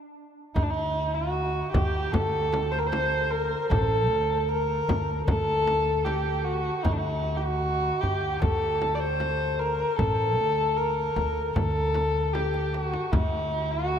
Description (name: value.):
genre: Persian modal ensemble.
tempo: 76 BPM.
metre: 4/4.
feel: straight.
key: D dastgah homayun.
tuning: A4 = 441 Hz.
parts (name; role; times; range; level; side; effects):
dark kamancheh; melody; 0.5-14.0 s; D4 to D5; -26 LUFS; equal; none.
upright bass; bass; 0.6-14.0 s; A1 to D2; -30 LUFS; equal; none.
frame drum; percussion; 0.6-13.3 s; none; -33 LUFS; left 1 dB; none.
tombak; percussion; 0.6-14.0 s; none; -33 LUFS; right 1 dB; none.
room: wet cathedral reverb, RT60 5.1 s.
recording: in a vast, echoing space.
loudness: -24 LUFS.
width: side -8 dB against mid.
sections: 0.6-14.0 A section.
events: break 0.0-0.6; drum fill 12.3-13.1.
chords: none.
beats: | 0.56 1.34 2.13 2.92 | 3.71 4.49 5.28 6.07 | 6.85 7.64 8.42 9.21 | 9.99 10.77 11.56 12.34 | 13.12 13.90.